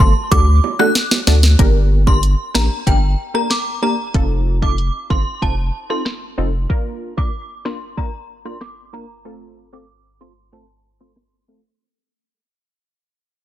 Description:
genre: dancehall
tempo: 94 BPM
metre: 4/4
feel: straight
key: unclear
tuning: A4 = 441 Hz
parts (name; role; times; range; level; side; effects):
- synth chime; melody; 0.0-11.1 s; G5 to F#6; -23 LUFS; equal; ensemble chorus, phaser, tremolo, tape echo
- punchy chord stab; accompaniment; 0.0-11.6 s; A3 to Bb4; -23 LUFS; equal; chorus, sidechain pumping
- saturated sub bass; bass; 0.0-6.7 s; F1 to D2; -15 LUFS; equal; none
- afro-pop drum kit; drums; 0.0-11.3 s; hi-hat, kick drum, rim click, snare drum; -17 LUFS; equal; none
- bongos; percussion; 0.0-1.4 s; none; -26 LUFS; right 11 dB; none
room: little or no reverb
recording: dense, heavily limited modern master, low-pass filter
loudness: -14 LUFS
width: side -13 dB against mid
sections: 0.0-1.6 A section; 1.6-11.8 B section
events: drum fill 1.0-1.6; fade-out 1.6-11.8; filter sweep 1.6-11.8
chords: 0.3 D; 1.6 Gm; 4.1 F7; 6.7 Bb; 9.3 F

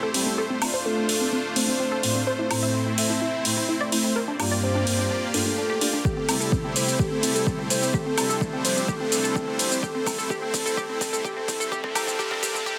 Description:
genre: progressive house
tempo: 127 BPM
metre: 4/4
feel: straight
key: unclear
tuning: A4 = 440 Hz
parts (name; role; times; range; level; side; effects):
- soft octave-layered synth lead; melody; 0.0-12.8 s; A4 to E5; -32 LUFS; equal; chorus, delay
- supersaw pad; sustained chords; 0.0-12.8 s; F3 to D5; -33 LUFS; equal; sidechain pumping
- analog pluck; arpeggios; 0.0-12.7 s; C4 to E5; -33 LUFS; equal; chorus, sidechain pumping, dub echo
- soft supersaw; stabs; 0.1-12.8 s; G2 to D5; -32 LUFS; equal; sidechain pumping, low-pass filter, dub echo
- electronic hi-hat, woodblock and shaker; drums; 0.1-12.8 s; none; -29 LUFS; equal; overdrive
- electronic kick drum; drums; 6.0-12.8 s; none; -30 LUFS; equal; overdrive
- riser and swell; sound effects; 10.7-12.8 s; none; barely audible; none; none
room: light reverb, digital ambience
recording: dense, heavily limited modern master, high-pass filter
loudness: -24 LUFS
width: mono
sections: 0.0-12.8 A section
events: build-up 0.0-12.8; filter sweep on synth arpeggio sound 0.0-12.8; filter sweep on supersaw synth 0.0-12.8; filter sweep on soft synth lead 0.0-12.8; drum fill 6.0-12.8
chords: 0.4 F6; 2.3 Am; 4.2 Gm7; 6.0 C6; 7.9 F6; 9.8 Am; 11.7 Gm7

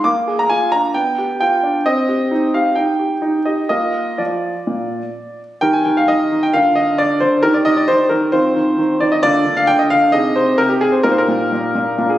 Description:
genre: classical-period piano sonatina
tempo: 123-136 BPM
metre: 4/4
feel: rubato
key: Eb major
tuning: A4 = 441 Hz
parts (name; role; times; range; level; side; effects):
- clear grand piano; solo; 0.0-12.2 s; Bb2 to D6; -14 LUFS; equal; none
room: moderate recital hall reverb, RT60 1.6 s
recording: recorded on a phone in the room, studio reverb, compression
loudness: -14 LUFS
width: side -13 dB against mid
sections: 0.0-5.6 A section; 5.6-12.2 B section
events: none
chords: 0.1 Bb7; 1.0 G7/B; 1.9 Cm; 3.7 Bb; 5.6 Eb; 6.5 Bb/D; 7.4 Eb; 8.3 F5/Eb; 9.2 Bb/D; 10.1 Ab/C; 11.0 Eb/Bb

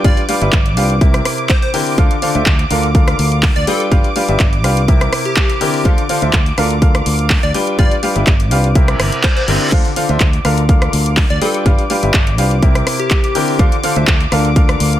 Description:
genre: piano house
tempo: 124 BPM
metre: 4/4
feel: straight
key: unclear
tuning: A4 = 440 Hz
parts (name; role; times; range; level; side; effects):
- plucky unison lead; melody; 0.0-13.6 s; G4 to D5; -23 LUFS; left 1 dB; tape echo
- analog string pad; sustained chords; 0.0-15.0 s; D6; -24 LUFS; right 1 dB; ensemble chorus, sidechain pumping
- clear concert grand piano; riff; 0.0-15.0 s; C3 to G5; -18 LUFS; left 1 dB; sidechain pumping
- fingered electric bass; bass; 0.0-15.0 s; G1 to D2; -17 LUFS; equal; sidechain pumping
- electronic kick drum; drums; 0.0-14.7 s; none; -13 LUFS; equal; none
- house drum kit; drums; 0.0-15.0 s; crash cymbal, handclaps, hi-hat, rim click; -20 LUFS; equal; none
- reverse cymbal; sound effects; 8.9-9.7 s; none; -22 LUFS; right 1 dB; none
room: digital ambience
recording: none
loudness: -11 LUFS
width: side -12 dB against mid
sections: 0.0-15.0 A section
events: reverse cymbal 8.9-9.7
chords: 0.0 G7; 1.0 C7; 2.0 Dm7; 2.7 Bbmaj7/D; 3.7 G7; 4.9 C7; 5.9 Dm7; 6.6 Bbmaj7/D; 7.5 G7; 8.8 C7; 9.7 Dm7; 10.4 Bbmaj7/D; 11.4 G7; 12.6 C7; 13.6 Dm7; 14.3 Bbmaj7/D

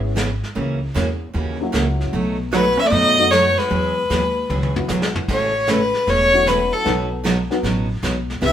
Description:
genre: country, western swing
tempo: 152 BPM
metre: 4/4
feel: swing 67% on 8ths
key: unclear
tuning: A4 = 439 Hz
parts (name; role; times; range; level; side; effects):
- honky-tonk upright piano; accompaniment; 0.0-8.5 s; F#3 to B4; -25 LUFS; left 3 dB; none
- upright bass; bass; 0.0-8.5 s; E1 to F#2; -24 LUFS; equal; none
- picked steel-string acoustic guitar; accompaniment; 0.2-8.5 s; B2 to G#4; -24 LUFS; right 2 dB; none
- vintage brush drum kit; drums; 0.2-8.5 s; brushed snare drum, crash cymbal, hi-hat, kick drum, snare drum, toms; -27 LUFS; equal; none
- rich fiddle; melody; 2.5-8.5 s; A4 to E5; -17 LUFS; left 1 dB; none
- hollow-body jazz guitar; second line; 2.5-4.9 s; F#3 to C#4; -25 LUFS; equal; none
room: wet studio reverb, RT60 0.7 s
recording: band playing live in one room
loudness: -16 LUFS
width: side -10 dB against mid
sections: 0.0-5.3 A section; 5.3-8.5 B section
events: drum fill 4.5-5.3; fiddle solo 5.3-8.5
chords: 0.0 C#m7; 0.6 F#7/C#; 2.1 B7; 3.7 Eadd9; 5.3 A6; 6.9 B

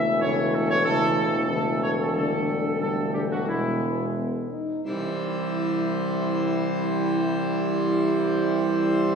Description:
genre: classical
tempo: 93 BPM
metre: 4/4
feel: straight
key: unclear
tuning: A4 = 440 Hz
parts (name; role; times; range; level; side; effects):
- dark trumpet section; melody; 0.0-9.2 s; E4 to E5; -28 LUFS; right 1 dB; none
- mellow French horn section; sustained chords; 0.0-9.2 s; A3 to E4; -28 LUFS; right 1 dB; none
- warm trombone section; sustained chords; 0.0-9.2 s; B2 to G#3; -30 LUFS; equal; none
- clear tuba; bass; 0.0-9.2 s; E1 to C2; -28 LUFS; equal; none
- pipe organ, full organ; sustained chords; 4.9-9.2 s; E3 to C5; -28 LUFS; equal; none
room: wet scoring stage reverb, RT60 1.8 s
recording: heard from further back in the room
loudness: -22 LUFS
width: side -6 dB against mid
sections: 0.0-4.9 A section; 4.9-9.2 B section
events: none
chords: 0.0 A/E; 2.2 Gsus2/E; 3.5 E; 4.9 C

